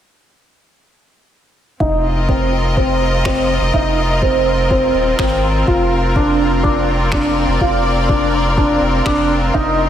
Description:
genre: piano and strings electronica.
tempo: 124 BPM.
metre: 4/4.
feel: straight.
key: unclear.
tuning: A4 = 440 Hz.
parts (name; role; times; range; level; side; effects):
bright studio string section; sustained chords; 1.8-9.9 s; C4 to Eb5; -19 LUFS; left 1 dB; sidechain pumping, shimmer reverb.
warm grand piano; riff; 1.8-9.8 s; C4 to F4; -17 LUFS; right 1 dB; lush chorus, low-pass filter, tape echo, shimmer reverb.
round analog bass; bass; 1.8-9.9 s; Eb1 to Ab1; -19 LUFS; equal; sidechain pumping.
electronic kick drum; drums; 1.8-9.6 s; none; -20 LUFS; equal; overdrive.
electronic finger snaps; drums; 3.3-9.2 s; none; -27 LUFS; equal; overdrive.
room: wet lush hall reverb, RT60 1.9 s, digital ambience.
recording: dreamy mix soaked in reverb.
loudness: -13 LUFS.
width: side -10 dB against mid.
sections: 1.8-9.9 A section.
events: filter sweep on grand piano 1.8-9.9.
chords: 1.8 F7(no3); 5.7 Bbadd9/F.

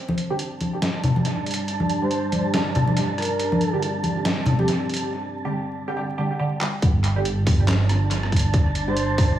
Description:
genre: deep dubstep.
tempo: 140 BPM.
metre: 4/4.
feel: swing 59% on 16ths, half-time.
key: unclear.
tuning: A4 = 441 Hz.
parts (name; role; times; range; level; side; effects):
deep dark ambient pad; sustained chords; 0.0-9.4 s; G3 to D5; -29 LUFS; right 1 dB; chorus, built-in reverb.
wind-like tuned noise texture; texture; 0.4-9.4 s; A5; -32 LUFS; right 4 dB; built-in reverb.
congas; percussion; 0.1-4.7 s; none; -24 LUFS; left 1 dB; dub echo.
trip hop sampler-style drum kit; drums; 0.2-9.3 s; handclaps, hi-hat, rim click, snare drum; -28 LUFS; equal; overdrive, analog delay.
filtered dub chord stab; stabs; 0.3-8.9 s; D3 to G4; -28 LUFS; right 2 dB; phaser, lush chorus, analog delay.
breathy flute-like synth lead; melody; 2.0-3.8, 8.9-9.3 s; Bb4 to C5; -29 LUFS; equal; chorus, dub echo.
dark detuned saw bass; bass; 6.8-9.4 s; G1; -21 LUFS; right 1 dB; tube saturation.
electronic kick drum; drums; 6.8-9.3 s; none; -19 LUFS; equal; none.
room: moderate echo chamber reverb, RT60 1.6 s.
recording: echo-heavy mix, vinyl crackle, studio reverb.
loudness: -20 LUFS.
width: side -12 dB against mid.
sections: 0.0-6.8 A section; 6.8-9.4 B section.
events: build-up 0.0-6.8; break 5.1-6.8; drum fill 6.6; drop 6.8-9.4.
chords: 0.0 G5.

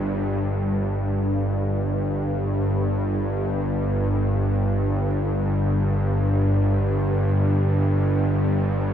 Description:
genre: ambient.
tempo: free time.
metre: none.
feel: none.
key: unclear.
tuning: A4 = 440 Hz.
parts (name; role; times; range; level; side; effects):
bowed-like drone; solo; 0.0-8.9 s; G1 to G2; -20 LUFS; equal; built-in reverb, tape echo.
room: moderate huge ambient reverb, RT60 8.6 s.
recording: dreamy mix soaked in reverb.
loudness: -20 LUFS.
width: side -9 dB against mid.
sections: 0.4-8.9 A section.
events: none.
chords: none.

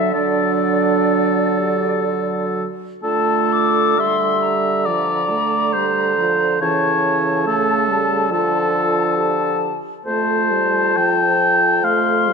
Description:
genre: classical, slow romantic movement for wind quintet.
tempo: 60-71 BPM.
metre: 4/4.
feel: rubato.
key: D major, D minor from 3.0 s.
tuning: A4 = 440 Hz.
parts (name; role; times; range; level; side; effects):
silver concert flute; melody; 0.0-12.3 s; D5 to D6; -23 LUFS; left 7 dB; none.
warm oboe; second line; 0.0-12.3 s; A4 to G5; -19 LUFS; left 2 dB; none.
mellow clarinet; accompaniment; 0.0-12.3 s; D4 to A4; -24 LUFS; right 10 dB; none.
warm French horn; accompaniment; 0.0-12.3 s; E3 to A3; -25 LUFS; right 2 dB; none.
mellow bassoon; bass; 0.0-12.3 s; F2 to D3; -23 LUFS; right 3 dB; none.
room: moderate scoring stage reverb, RT60 1.5 s.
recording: none.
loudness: -15 LUFS.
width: side -5 dB against mid.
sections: 0.0-3.0 A section; 3.0-12.3 B section.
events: none.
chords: 0.0 D; 3.0 Dm; 6.6 A7/C#; 8.3 Dm; 10.1 F.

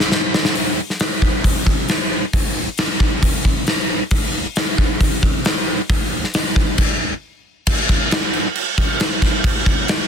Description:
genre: rock.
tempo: 135 BPM.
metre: 4/4.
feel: straight.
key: none.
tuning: none.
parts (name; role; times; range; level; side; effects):
gated 80s drum kit; drums; 0.0-10.0 s; crash cymbal, hi-hat, kick drum, snare drum; -16 LUFS; equal; none.
room: little or no reverb.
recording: dense, heavily limited modern master.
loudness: -16 LUFS.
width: side -7 dB against mid.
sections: 0.0-7.7 A section; 7.7-10.1 B section.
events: drum fill 0.0-0.6; stop 6.8-7.7.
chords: none.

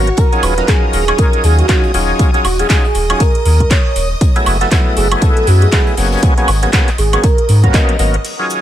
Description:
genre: deep house.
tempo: 119 BPM.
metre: 4/4.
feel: swing 59% on 16ths.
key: Eb minor.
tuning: A4 = 440 Hz.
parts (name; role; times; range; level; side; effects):
warm velvety synth lead; melody; 0.0-8.1 s; Gb4 to Eb5; -20 LUFS; right 2 dB; chorus, analog delay.
overdriven tonewheel organ; stabs; 0.0-8.6 s; Gb3 to Bb4; -17 LUFS; equal; chorus vibrato, slow rotary speaker, analog delay.
sub bass with octave; bass; 0.0-8.2 s; Eb1 to Ab2; -13 LUFS; equal; sidechain pumping.
string machine, violins; texture; 0.0-8.6 s; Db5 to Eb6; -28 LUFS; equal; ensemble chorus, sidechain pumping.
house drum kit; drums; 0.1-8.6 s; crash cymbal, handclaps, hi-hat, shaker, woodblock; -20 LUFS; right 2 dB; none.
big rock drum kit; drums; 0.2-8.1 s; hi-hat, snare drum; -31 LUFS; left 4 dB; none.
electronic kick drum; drums; 0.2-7.9 s; none; -12 LUFS; equal; none.
warbly tape-like pad; sustained chords; 8.4-8.6 s; Eb3 to Bb4; -39 LUFS; right 1 dB; none.
room: little or no reverb.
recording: echo-heavy mix.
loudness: -10 LUFS.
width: side -12 dB against mid.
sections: 0.0-8.2 A section.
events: band accent 7.7.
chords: 0.2 Ebm11; 4.2 Gbm11; 6.2 Abm11.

